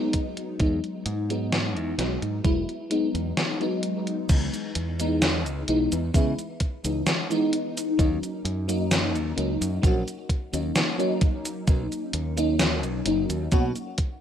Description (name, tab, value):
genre	vaporwave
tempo	65 BPM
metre	4/4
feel	straight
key	C# dorian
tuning	A4 = 442 Hz
part	FM electric piano with soft pad layer	accompaniment	0.0-13.7 s	E3 to F#4	-26 LUFS	left 1 dB	phaser, ensemble chorus, tape echo
part	electronic kick drum	drums	0.1-14.2 s	none	-22 LUFS	equal	vintage 12-bit sampler grit
part	gated 80s digital drum machine	drums	0.1-14.2 s	cabasa, crash cymbal, hi-hat, snare drum	-27 LUFS	equal	gated reverb, gated reverb snare, vintage 12-bit sampler grit
part	modern bright fingered electric bass	bass	0.6-13.7 s	E1 to C#3	-29 LUFS	equal	none
room	little or no reverb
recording	rough home demo mix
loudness	-23 LUFS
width	side -9 dB against mid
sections	0.0-4.3 A section; 4.3-14.2 B section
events	kick drops out 3.4-4.3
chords	0.1 Emaj7; 4.3 C#m9; 8.0 D#m7; 11.2 Bmaj9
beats	| 0.60 1.52 2.45 3.37 | 4.29 5.22 6.14 7.06 | 7.99 8.91 9.83 10.76 | 11.68 12.60 13.52